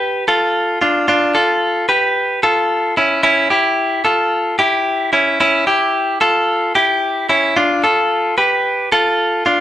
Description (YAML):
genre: indie pop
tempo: 111 BPM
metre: 4/4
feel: straight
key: unclear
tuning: A4 = 440 Hz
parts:
  - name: direct-recorded clean electric guitar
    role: solo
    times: 0.0-9.6 s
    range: C#4 to B4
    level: -13 LUFS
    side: equal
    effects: none
room: moderate large studio reverb, RT60 1.0 s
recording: band playing live in one room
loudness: -13 LUFS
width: side -12 dB against mid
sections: 0.0-9.6 A section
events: none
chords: 0.0 Dm; 3.0 A; 7.6 Dm